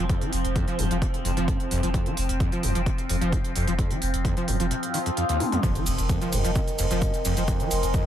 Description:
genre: driving peak-time techno.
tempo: 130 BPM.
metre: 4/4.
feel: straight.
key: F minor.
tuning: A4 = 440 Hz.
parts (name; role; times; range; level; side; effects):
overdriven acid bass; riff; 0.0-8.0 s; Eb2 to F3; -29 LUFS; equal; distortion, ensemble chorus, sidechain pumping, dub echo.
warm sub bass; bass; 0.0-7.9 s; F1; -27 LUFS; equal; overdrive, sidechain pumping, low-pass filter.
overtone-sweeping drone; drone; 0.0-8.1 s; F3 to C4; -31 LUFS; equal; chorus, built-in reverb, phaser, sidechain pumping.
electronic kick drum; drums; 0.1-8.0 s; none; -26 LUFS; equal; overdrive.
techno drum kit; drums; 0.1-8.0 s; hi-hat, ride cymbal, shaker, toms; -32 LUFS; right 1 dB; sidechain pumping on hats, sidechain pumping on toms, sidechain pumping on cymbals, sidechain pumping on perc.
swell and impact; sound effects; 4.8-7.5 s; none; -32 LUFS; left 1 dB; none.
warbly tape-like pad; texture; 6.0-8.1 s; Bb4 to Ab5; -31 LUFS; right 2 dB; chorus, built-in reverb, sidechain pumping.
room: light reverb.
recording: echo-heavy mix.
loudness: -22 LUFS.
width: side -11 dB against mid.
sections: 0.0-5.6 A section; 5.6-8.1 B section.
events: swell 4.8-5.6; drum fill 5.4; drop 5.6-8.1; impact 5.6-7.5.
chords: 0.0 F5; 5.6 Fm.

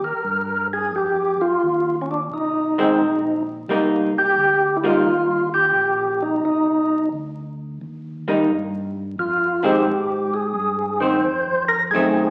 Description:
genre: jazz.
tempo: 87 BPM.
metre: 4/4.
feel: swing 67% on 8ths.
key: unclear.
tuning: A4 = 440 Hz.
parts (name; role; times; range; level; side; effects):
percussive tonewheel organ; melody; 0.0-12.3 s; Db4 to C5; -21 LUFS; equal; slow rotary speaker, overdrive, chorus vibrato.
mellow tonewheel organ; bass; 0.0-12.3 s; Bb1 to Ab2; -35 LUFS; equal; chorus vibrato, slow rotary speaker.
vintage hollow-body jazz guitar; accompaniment; 2.8-12.3 s; Eb3 to Eb4; -23 LUFS; equal; none.
room: wet large studio reverb, RT60 1.4 s.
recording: very old 78 rpm record, vinyl crackle.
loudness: -20 LUFS.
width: mono.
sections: 0.0-12.3 A section.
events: none.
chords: 0.0 Cm7 (rootless); 0.9 F7(no3); 3.7 Cm7; 9.2 Fm7.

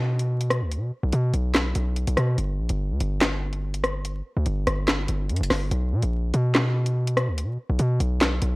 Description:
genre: hip hop, drill.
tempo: 144 BPM.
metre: 4/4.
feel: half-time.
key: unclear.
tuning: A4 = 441 Hz.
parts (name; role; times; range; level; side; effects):
hard-hitting 808-style bass; bass; 0.0-8.6 s; F#1 to B2; -23 LUFS; equal; none.
drill drum kit; drums; 0.2-8.5 s; handclaps, hi-hat, rim click, snare drum; -25 LUFS; equal; overdrive.
room: light reverb, digital ambience.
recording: worn, warbling old tape, cassette tape, vinyl crackle, warbly pitch drift.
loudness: -22 LUFS.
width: side -23 dB against mid.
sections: 0.0-5.7 A section; 5.7-8.6 B section.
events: none.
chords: none.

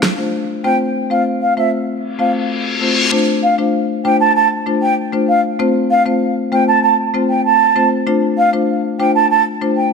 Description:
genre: dancehall.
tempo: 97 BPM.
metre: 4/4.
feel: straight.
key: unclear.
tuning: A4 = 440 Hz.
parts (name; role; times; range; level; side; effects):
marimba with medium mallets; accompaniment; 0.2-9.8 s; A3 to C5; -16 LUFS; left 3 dB; none.
mellow wooden flute; melody; 0.6-9.9 s; E5 to A5; -15 LUFS; right 3 dB; ping-pong delay.
reverse cymbal; sound effects; 2.3-3.1 s; none; -18 LUFS; left 5 dB; none.
room: moderate lush hall reverb, RT60 1.8 s, small room ambience.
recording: bright 1980s-style digital production.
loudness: -13 LUFS.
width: side -5 dB against mid.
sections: 0.0-3.1 A section; 3.1-9.9 B section.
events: reverse cymbal 2.3-3.1.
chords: 0.0 Dm7; 0.6 F; 3.1 Dm7; 5.6 F; 8.1 Dm7.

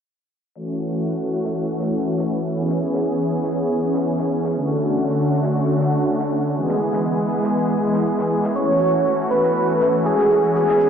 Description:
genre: progressive house.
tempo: 120 BPM.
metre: 4/4.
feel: straight.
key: F# minor.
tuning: A4 = 440 Hz.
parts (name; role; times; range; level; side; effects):
supersaw pad; sustained chords; 0.6-10.9 s; D3 to G#4; -19 LUFS; equal; none.
modern studio drum kit; drums; 0.6-10.9 s; hi-hat, snare drum; -38 LUFS; left 1 dB; none.
wide unison lead; melody; 8.6-10.9 s; G#4 to C#5; -17 LUFS; right 1 dB; digital delay.
tube shaker; percussion; 8.6-10.9 s; none; -58 LUFS; right 4 dB; none.
room: wet lush hall reverb, RT60 1.8 s.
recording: played on a big sound system in a bare room, large studio reverb, low-pass filter.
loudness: -18 LUFS.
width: side -7 dB against mid.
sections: 0.6-10.9 A section.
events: filter sweep 0.6-10.9.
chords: 0.6 F#m7; 2.6 C#m7; 4.6 Dmaj7; 6.6 E; 8.6 F#m7.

